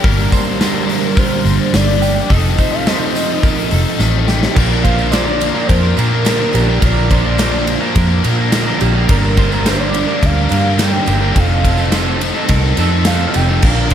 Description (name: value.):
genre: rock, shoegaze and dream pop.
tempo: 106 BPM.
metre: 4/4.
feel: straight.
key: unclear.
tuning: A4 = 440 Hz.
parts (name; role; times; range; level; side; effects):
twelve-string electric guitar; arpeggios; 0.0-13.9 s; G4 to C5; -26 LUFS; right 9 dB; analog chorus, slapback echo.
biting overdriven guitar; riff; 0.0-13.9 s; F2 to Eb4; -19 LUFS; left 10 dB; lush chorus.
overdriven semi-hollow guitar; riff; 0.0-13.9 s; G2 to Bb4; -20 LUFS; right 10 dB; reverse reverb.
vintage muted fingered electric bass; bass; 0.0-13.9 s; F1 to Bb2; -16 LUFS; equal; none.
huge arena drum kit; drums; 0.0-13.9 s; crash cymbal, hi-hat, kick drum, ride cymbal, snare drum; -17 LUFS; equal; none.
tambourine; percussion; 0.0-13.9 s; none; -33 LUFS; right 15 dB; none.
warm velvety synth lead; melody; 0.9-13.9 s; Bb4 to G5; -22 LUFS; left 1 dB; chorus, slapback echo.
room: light reverb, small room ambience.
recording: none.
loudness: -12 LUFS.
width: side -9 dB against mid.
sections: 0.0-4.6 A section; 4.6-13.9 B section.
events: drum fill 4.0-4.6.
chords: 0.0 Gmadd11; 2.3 F7; 4.6 Bb; 9.1 Gm7; 11.4 F7.